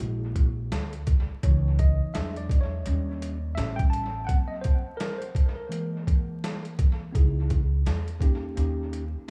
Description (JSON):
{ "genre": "hip hop, jazz-hop", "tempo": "84 BPM", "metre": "4/4", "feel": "swing 60% on 16ths", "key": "unclear", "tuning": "A4 = 440 Hz", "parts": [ { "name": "tine electric piano", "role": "accompaniment", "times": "0.0-9.0 s", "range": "E3 to A5", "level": "-36 LUFS", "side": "equal", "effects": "dub echo" }, { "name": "upright bass", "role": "bass", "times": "0.0-9.3 s", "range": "A1 to E2", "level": "-30 LUFS", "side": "equal", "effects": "none" }, { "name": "boom bap sampler-style drum kit", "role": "drums", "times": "0.4-9.1 s", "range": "hi-hat, kick drum, snare drum", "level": "-26 LUFS", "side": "equal", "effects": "vintage 12-bit sampler grit" } ], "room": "little or no reverb", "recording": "echo-heavy mix, vinyl crackle, small room ambience", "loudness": "-26 LUFS", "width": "mono", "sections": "0.0-7.1 A section; 7.1-9.3 B section", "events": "tine electric piano solo 0.0-7.1", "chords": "0.0 A#7#11; 1.4 C#m7; 2.1 E9; 2.9 D#7; 3.6 A9; 4.3 D#m6/F# (rootless); 5.7 E; 7.1 C#m7; 7.9 Edim7; 8.6 D#7", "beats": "0.00 0.72 | 1.43 2.15 2.86 3.58 | 4.29 5.00 5.72 6.43 | 7.15 7.86 8.57 9.29" }